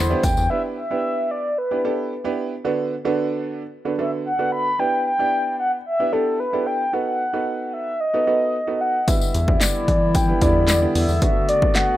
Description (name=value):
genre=dance-pop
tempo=112 BPM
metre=4/4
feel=straight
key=E minor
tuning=A4 = 444 Hz
part: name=mellow horn-like synth lead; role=melody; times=0.0-12.0 s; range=A4 to B5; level=-22 LUFS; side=equal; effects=chorus, dub echo
part: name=mellow woodwind section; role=sustained chords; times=0.0-0.5, 9.1-12.0 s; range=D3 to F#4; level=-25 LUFS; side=left 1 dB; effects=sidechain pumping
part: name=round analog bass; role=bass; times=0.0-0.5, 9.3-11.2 s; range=E2 to E3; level=-21 LUFS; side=equal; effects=sidechain pumping
part: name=clear concert grand piano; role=accompaniment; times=0.1-12.0 s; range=D3 to D5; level=-25 LUFS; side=right 4 dB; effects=sidechain pumping
part: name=punchy analog drum machine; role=drums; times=0.2-0.4, 9.1-11.9 s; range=handclaps, hi-hat, kick drum, snare drum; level=-20 LUFS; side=equal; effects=none
part: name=tambourine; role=percussion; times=0.2-0.5, 9.1-11.2 s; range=none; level=-30 LUFS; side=left 8 dB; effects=none
room=small room ambience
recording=rough home demo mix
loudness=-19 LUFS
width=side -14 dB against mid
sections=0.5-12.0 A section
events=none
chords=0.0 Em7; 2.6 Bm7/D; 4.8 Em7; 6.9 B7; 9.1 Em7; 11.2 Bm7/D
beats=| 0.51 1.04 1.58 2.11 | 2.65 3.18 3.72 4.25 | 4.79 5.33 5.86 6.40 | 6.93 7.47 8.01 8.54 | 9.08 9.61 10.15 10.68 | 11.22 11.76